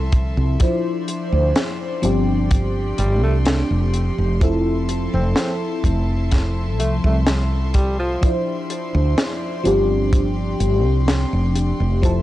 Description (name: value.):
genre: vaporwave.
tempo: 63 BPM.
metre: 4/4.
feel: straight.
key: unclear.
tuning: A4 = 440 Hz.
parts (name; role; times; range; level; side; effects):
FM electric piano with soft pad layer; accompaniment; 0.0-12.2 s; F3 to C5; -22 LUFS; left 1 dB; phaser, analog chorus, analog delay.
bright chamber string section; sustained chords; 0.0-12.2 s; F3 to C6; -32 LUFS; left 1 dB; none.
woody fretless electric bass; bass; 0.0-12.2 s; F1 to D2; -19 LUFS; equal; tube saturation.
kick drum; drums; 0.1-12.2 s; none; -17 LUFS; equal; vintage 12-bit sampler grit.
tight funk drum kit; drums; 0.1-12.2 s; hi-hat, snare drum; -23 LUFS; equal; vintage 12-bit sampler grit.
breathy tenor saxophone; melody; 3.0-8.3 s; F3 to C4; -28 LUFS; equal; tape echo.
room: light reverb, studio reverb.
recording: dry, gritty hardware recording, cassette tape.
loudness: -17 LUFS.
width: side -15 dB against mid.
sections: 0.0-12.2 A section.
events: none.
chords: 0.0 Fmaj7; 0.6 Dm9; 2.0 G7sus4; 4.4 Fmaj7; 8.2 Dm9; 9.7 G7sus4.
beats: | 0.60 1.56 2.51 3.46 | 4.42 5.37 6.32 7.27 | 8.22 9.18 10.13 11.08 | 12.03.